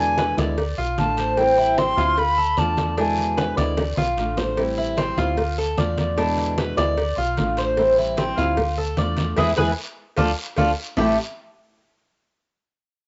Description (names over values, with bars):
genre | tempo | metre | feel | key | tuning
latin, Cuban son and guajira | 150 BPM | 4/4 | straight | A minor from 4.6 s | A4 = 440 Hz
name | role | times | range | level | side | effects
hollow concert flute | melody | 0.0-3.5 s | G5 to C6 | -23 LUFS | equal | cassette tape
flamenco guitar | accompaniment | 0.0-11.1 s | A2 to F4 | -30 LUFS | equal | cassette tape
Cuban tres | arpeggios | 0.0-11.2 s | A3 to D5 | -25 LUFS | equal | cassette tape, plate reverb
woody fretless electric bass | bass | 0.0-11.2 s | A1 to E2 | -30 LUFS | equal | ensemble chorus
congas | percussion | 0.2-11.1 s | none | -29 LUFS | equal | none
cowbell and bongos | percussion | 0.2-11.1 s | none | -33 LUFS | equal | none
guiro | percussion | 0.2-11.1 s | none | -40 LUFS | equal | none
room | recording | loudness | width
moderate booth ambience, RT60 0.2 s | home recording on cassette, nothing above 7.8 kHz | -21 LUFS | mono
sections
0.0-4.6 A section; 4.6-11.0 B section; 11.0-12.6 C section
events
drum fill 3.8-4.6; band accent 9.4-11.0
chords
0.0 E7; 0.6 Dm; 1.4 Am7; 2.2 Dm; 3.0 E7; 3.8 Dm; 4.6 Am7; 5.4 Dm; 6.2 E7; 7.0 Dm; 7.8 Am7; 8.6 Dm; 9.4 E; 10.2 Dm; 11.0 A7(no3)